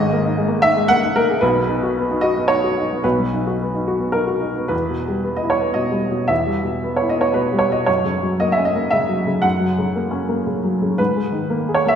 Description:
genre	neoclassical minimalist piano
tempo	114 BPM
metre	3/4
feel	rubato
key	unclear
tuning	A4 = 440 Hz
part	clear upright piano	solo	0.0-12.0 s	G#1 to F#5	-16 LUFS	equal	none
room	wet concert hall reverb, RT60 1.8 s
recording	heard from further back in the room, nothing above 11.0 kHz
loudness	-17 LUFS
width	side -8 dB against mid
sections	0.0-4.7 A section; 4.7-12.0 B section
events	none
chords	0.0 G#sus2; 1.4 B; 4.7 Em; 7.9 F#; 11.0 G#madd9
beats	0.37 0.89 | 1.42 1.95 2.48 | 3.03 3.60 4.16 | 4.72 5.26 5.78 | 6.30 6.83 7.35 | 7.88 8.40 8.93 | 9.44 9.96 10.48 | 10.99 11.50

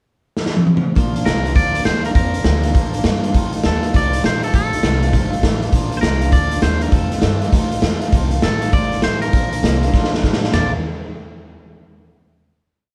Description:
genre	rockabilly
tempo	201 BPM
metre	4/4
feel	swing 64% on 8ths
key	Bb major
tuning	A4 = 440 Hz
part	raw garage drum kit	drums	0.4-10.6 s	hi-hat, kick drum, ride cymbal, snare drum, toms	-20 LUFS	equal	none
part	picked steel-string acoustic guitar	accompaniment	1.0-10.7 s	F2 to F4	-26 LUFS	equal	none
part	upright bass	bass	1.0-10.7 s	G1 to A2	-23 LUFS	equal	none
part	twangy electric guitar	melody	1.3-10.7 s	A4 to D5	-26 LUFS	equal	none
room	light reverb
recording	band playing live in one room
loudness	-17 LUFS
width	mono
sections	0.0-1.0 pickup bar; 1.0-10.5 A section; 10.5-11.7 final chord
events	drum fill 0.4-1.0, 9.9-10.5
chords	0.0 N.C.; 1.0 Bb; 3.3 F7; 5.7 Bb; 6.9 F7; 9.3 Bb; 10.5 Bb5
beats	0.07 0.36 0.66 | 0.96 1.26 1.56 1.86 | 2.15 2.45 2.75 3.05 | 3.35 3.64 3.94 4.24 | 4.54 4.83 5.13 5.43 | 5.73 6.03 6.33 6.63 | 6.93 7.23 7.53 7.83 | 8.13 8.43 8.73 9.03 | 9.33 9.63 9.93 10.23 | 10.54

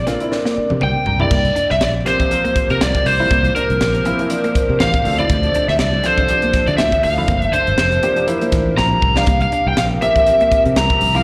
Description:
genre	electric jazz fusion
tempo	120 BPM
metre	4/4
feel	swing 55% on 16ths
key	C mixolydian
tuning	A4 = 440 Hz
part	lead guitar through a small cranked amp	melody	0.0-11.2 s	Bb4 to Bb5	-19 LUFS	equal	overdrive, slapback echo
part	warm concert grand piano	accompaniment	0.1-11.2 s	D3 to Bb5	-26 LUFS	equal	slapback echo
part	clean electric guitar	stabs	0.1-11.2 s	A3 to E4	-29 LUFS	equal	subtle chorus, slapback echo
part	crisp fusion drum kit	drums	0.1-11.1 s	crash cymbal, hi-hat, kick drum, snare drum, toms	-23 LUFS	equal	none
part	fingered electric bass	bass	0.6-11.2 s	F1 to D3	-22 LUFS	equal	none
part	evolving wavetable pad	sustained chords	1.3-11.2 s	F3 to C5	-30 LUFS	equal	chorus, built-in reverb
room	light reverb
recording	live gig heard through the venue's PA, recital hall reverb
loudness	-16 LUFS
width	mono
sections	0.0-1.3 A section; 1.3-11.2 A section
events	drum fill 0.3-1.3, 8.8-9.3; grand piano fill 0.3-1.3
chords	0.0 C7sus2; 1.3 C7sus4; 5.0 Dm7; 7.3 Gm7; 9.3 C7sus4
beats	0.31 0.81 | 1.31 1.80 2.30 2.80 | 3.30 3.80 4.30 4.80 | 5.30 5.79 6.29 6.79 | 7.29 7.79 8.28 8.78 | 9.28 9.78 10.27 10.77

